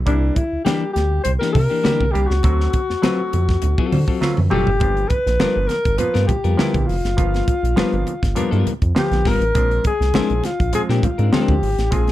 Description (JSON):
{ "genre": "funk", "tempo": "101 BPM", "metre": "4/4", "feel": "straight", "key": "unclear", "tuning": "A4 = 444 Hz", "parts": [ { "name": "round analog bass", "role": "bass", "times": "0.0-12.1 s", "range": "E#1 to D3", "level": "-19 LUFS", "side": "equal", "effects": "none" }, { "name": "breathy alto saxophone", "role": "melody", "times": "0.1-12.1 s", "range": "D4 to C5", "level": "-22 LUFS", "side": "left 3 dB", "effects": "none" }, { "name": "overdriven clav", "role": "stabs", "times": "0.1-12.1 s", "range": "F3 to C5", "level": "-27 LUFS", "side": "right 4 dB", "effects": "none" }, { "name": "crisp fusion drum kit", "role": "drums", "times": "0.1-12.1 s", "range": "hi-hat, kick drum, snare drum, toms", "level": "-22 LUFS", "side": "equal", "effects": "none" }, { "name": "congas", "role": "percussion", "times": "0.1-12.1 s", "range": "none", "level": "-28 LUFS", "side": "right 5 dB", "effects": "none" }, { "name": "semi-hollow electric guitar", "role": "accompaniment", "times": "0.6-11.5 s", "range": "E3 to B4", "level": "-22 LUFS", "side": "left 6 dB", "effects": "none" } ], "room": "studio reverb", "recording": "dry, close 1970s-style studio recording", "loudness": "-16 LUFS", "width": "side -14 dB against mid", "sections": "0.0-4.8 A section; 4.8-12.1 B section", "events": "clav fill 3.6-4.8; drum fill 4.2-4.8", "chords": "0.1 C9; 2.4 D7#9; 4.8 G7#9; 9.6 Bb9" }